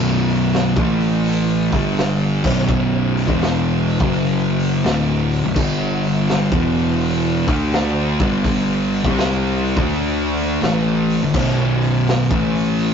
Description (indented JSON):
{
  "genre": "stoner and doom metal",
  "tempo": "83 BPM",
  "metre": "4/4",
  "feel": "swing 66% on 8ths",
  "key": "B phrygian",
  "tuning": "A4 = 442 Hz",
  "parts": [
    { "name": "fuzz guitar", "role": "riff", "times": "0.0-12.9 s", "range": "B1 to D4", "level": "-20 LUFS", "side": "left 5 dB", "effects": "distortion" },
    { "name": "thick fuzz guitar", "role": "riff", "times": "0.0-12.9 s", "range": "B1 to D4", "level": "-20 LUFS", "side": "right 5 dB", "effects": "distortion" },
    { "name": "fuzz picked electric bass", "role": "bass", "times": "0.0-12.9 s", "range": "B0 to D2", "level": "-24 LUFS", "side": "equal", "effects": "overdrive" },
    { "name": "raw garage drum kit", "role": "drums", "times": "0.3-12.9 s", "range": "crash cymbal, hi-hat, kick drum, snare drum", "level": "-23 LUFS", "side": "equal", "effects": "none" }
  ],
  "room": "light reverb",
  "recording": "rough rehearsal-room recording, tube saturation, nothing above 7.6 kHz",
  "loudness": "-16 LUFS",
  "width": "side -7 dB against mid",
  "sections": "0.0-12.9 A section",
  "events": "none",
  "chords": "0.0 B5; 0.7 A5; 1.6 G5; 2.3 B5; 3.2 E5; 3.9 F#5; 4.8 Bm; 5.6 G5; 6.5 E5; 7.4 D5; 8.1 G5; 9.0 C5; 9.7 D5; 10.6 G5; 11.3 B5; 12.2 A5"
}